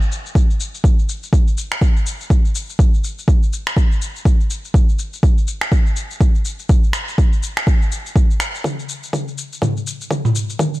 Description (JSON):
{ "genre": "house", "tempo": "123 BPM", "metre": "4/4", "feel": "swing 59% on 16ths", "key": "none", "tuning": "none", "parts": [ { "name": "afro-pop drum kit", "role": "drums", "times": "0.0-10.8 s", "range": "finger snaps, shaker, toms", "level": "-23 LUFS", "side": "equal", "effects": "overdrive, low-pass filter on perc, low-pass filter on snare, low-pass filter on toms, low-pass filter on room" }, { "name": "electronic kick drum", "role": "drums", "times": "0.4-10.7 s", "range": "none", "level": "-14 LUFS", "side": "equal", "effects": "overdrive, high-pass filter on kick, high-pass filter on room" } ], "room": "little or no reverb", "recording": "dark, warm production", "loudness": "-15 LUFS", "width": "side -18 dB against mid", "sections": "0.0-8.6 A section; 8.6-10.8 B section", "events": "build-up 8.6-10.8; drum fill 8.6-10.8; filter sweep 8.6-10.8", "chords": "none" }